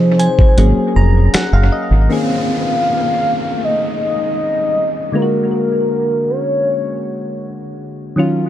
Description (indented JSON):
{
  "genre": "contemporary R&B",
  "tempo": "79 BPM",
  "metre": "4/4",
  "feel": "straight",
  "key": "Bb minor",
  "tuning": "A4 = 440 Hz",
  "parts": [
    { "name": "warm velvety synth lead", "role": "melody", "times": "0.0-7.8 s", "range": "Bb4 to F5", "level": "-18 LUFS", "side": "left 1 dB", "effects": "chorus, dub echo" },
    { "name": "soft electric-piano-like synth keys", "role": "accompaniment", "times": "0.0-8.5 s", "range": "C3 to Bb5", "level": "-19 LUFS", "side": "left 1 dB", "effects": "chorus, dub echo" },
    { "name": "deep dub fingered electric bass", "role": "bass", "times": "0.0-2.1 s", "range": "F1 to F3", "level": "-11 LUFS", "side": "equal", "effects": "none" },
    { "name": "dusty soul sampler-style drum kit", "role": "drums", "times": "0.2-1.5 s", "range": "hi-hat, kick drum, snare drum", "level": "-15 LUFS", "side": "equal", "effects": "dub echo" },
    { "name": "glassy synth bell", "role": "texture", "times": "0.2-0.9 s", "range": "Ab5", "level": "-27 LUFS", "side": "right 2 dB", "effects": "chorus, dub echo" },
    { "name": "downlifter", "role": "sound effects", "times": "2.1-8.2 s", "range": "none", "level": "-26 LUFS", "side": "right 1 dB", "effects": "none" }
  ],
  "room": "light reverb, digital ambience",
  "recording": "echo-heavy mix",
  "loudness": "-13 LUFS",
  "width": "side -12 dB against mid",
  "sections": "0.0-2.1 A section; 2.1-8.5 B section",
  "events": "synth keys fill 0.6-2.1",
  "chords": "0.0 Fm7; 0.6 Ab9sus4; 2.1 Bbm11; 5.1 Bb7alt",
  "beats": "0.58 1.33 | 2.10 2.85 3.61 4.37 | 5.13 5.89 6.65 7.41 | 8.17"
}